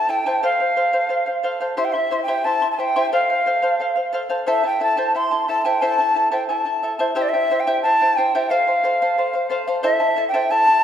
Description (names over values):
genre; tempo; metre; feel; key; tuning
andean folk; 89 BPM; 2/4; straight; A minor; A4 = 439 Hz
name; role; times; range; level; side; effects
large quena; melody; 0.0-10.8 s; D5 to C6; -18 LUFS; equal; none
charango; accompaniment; 0.0-10.8 s; E4 to C6; -22 LUFS; equal; none
room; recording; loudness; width
moderate concert hall reverb, RT60 1.9 s; recorded in a church or concert hall; -17 LUFS; side -9 dB against mid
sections
0.0-7.2 A section; 7.2-10.8 A section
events
none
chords
0.4 F; 1.8 C; 3.1 F; 4.5 Am; 7.2 C; 8.5 F; 9.8 Am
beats
| 0.42 1.10 | 1.77 2.45 | 3.12 3.79 | 4.47 5.14 | 5.81 6.48 | 7.15 7.82 | 8.49 9.16 | 9.83 10.49